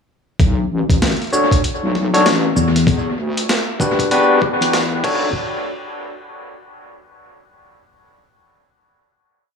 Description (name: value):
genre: glitch hop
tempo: 97 BPM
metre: 4/4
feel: swing 62% on 16ths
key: B minor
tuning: A4 = 440 Hz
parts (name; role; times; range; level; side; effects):
- wobble bass; bass; 0.4-5.3 s; A1 to E2; -20 LUFS; left 2 dB; chorus, tube saturation, high-pass filter
- boom bap sampler-style drum kit; drums; 0.4-5.2 s; crash cymbal, hi-hat, shaker, snare drum; -22 LUFS; equal; high-pass filter on hats, high-pass filter on snare, high-pass filter on perc, high-pass filter on cymbals, high-pass filter on room, dub echo
- electronic kick drum; drums; 0.4-5.2 s; none; -18 LUFS; equal; none
- overdriven tine electric piano; stabs; 1.3-5.3 s; D4 to C#5; -18 LUFS; left 1 dB; sidechain pumping, dub echo
- fingered electric bass; bass; 2.6-5.0 s; E2; -17 LUFS; left 2 dB; tube saturation
room: moderate spring reverb, RT60 1.7 s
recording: echo-heavy mix, high-pass filter, small room reverb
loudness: -14 LUFS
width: side -6 dB against mid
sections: 0.4-5.4 build; 5.4-7.8 final hit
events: build-up 0.4-5.4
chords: 0.4 Bm9; 2.9 Em9; 5.0 Bm9; 5.4 N.C.